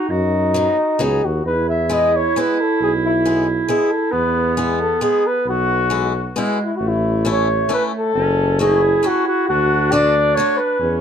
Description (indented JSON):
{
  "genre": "alpine folk, alpine dance band",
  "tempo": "135 BPM",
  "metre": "3/4",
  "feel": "straight",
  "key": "E major, A major from 6.8 s",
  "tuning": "A4 = 441 Hz",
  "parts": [
    { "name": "mellow flugelhorn", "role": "melody", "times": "0.0-11.0 s", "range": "D#4 to E5", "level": "-18 LUFS", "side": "left 1 dB", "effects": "analog delay" },
    { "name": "warm clarinet", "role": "second line", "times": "0.0-11.0 s", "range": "G#3 to F#4", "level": "-22 LUFS", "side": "right 5 dB", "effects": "none" },
    { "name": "warm tuba", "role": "bass", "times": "0.1-11.0 s", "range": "F#1 to F#2", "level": "-21 LUFS", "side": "equal", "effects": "none" },
    { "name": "picked swing-style acoustic guitar", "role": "accompaniment", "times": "0.5-10.6 s", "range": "F#3 to F#4", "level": "-24 LUFS", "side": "left 5 dB", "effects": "none" }
  ],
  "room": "moderate studio ambience, RT60 0.5 s",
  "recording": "dark, warm production",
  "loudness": "-15 LUFS",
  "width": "side -8 dB against mid",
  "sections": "0.0-6.8 A section; 6.8-11.0 B section",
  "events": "none",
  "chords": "0.0 B; 1.4 E; 6.8 A; 8.2 F#m; 9.5 D",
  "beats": "| 0.10 0.55 1.00 | 1.45 1.90 2.35 | 2.79 3.24 3.68 | 4.13 4.57 5.02 | 5.46 5.91 6.36 | 6.81 7.26 7.71 | 8.15 8.60 9.04 | 9.48 9.93 10.37 | 10.82"
}